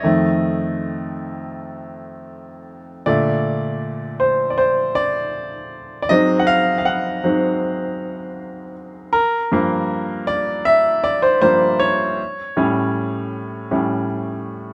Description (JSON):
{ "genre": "soul", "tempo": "79 BPM", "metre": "4/4", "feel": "straight", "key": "unclear", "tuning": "A4 = 439 Hz", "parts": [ { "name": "bright concert grand piano", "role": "solo", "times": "0.0-14.7 s", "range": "F2 to F#5", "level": "-20 LUFS", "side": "equal", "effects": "none" } ], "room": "moderate stone room reverb, RT60 1.1 s", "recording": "band playing live in one room", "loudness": "-19 LUFS", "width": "mono", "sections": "0.0-14.7 A section", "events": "grand piano solo 0.0-14.7", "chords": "0.0 F7; 3.1 Bbmaj7; 6.1 G#7; 9.1 Gm7; 12.2 A7", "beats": "| 0.03 0.79 1.55 2.31 | 3.07 3.83 4.58 5.34 | 6.10 6.86 7.62 8.38 | 9.14 9.90 10.67 11.43 | 12.19 12.96 13.72 14.48" }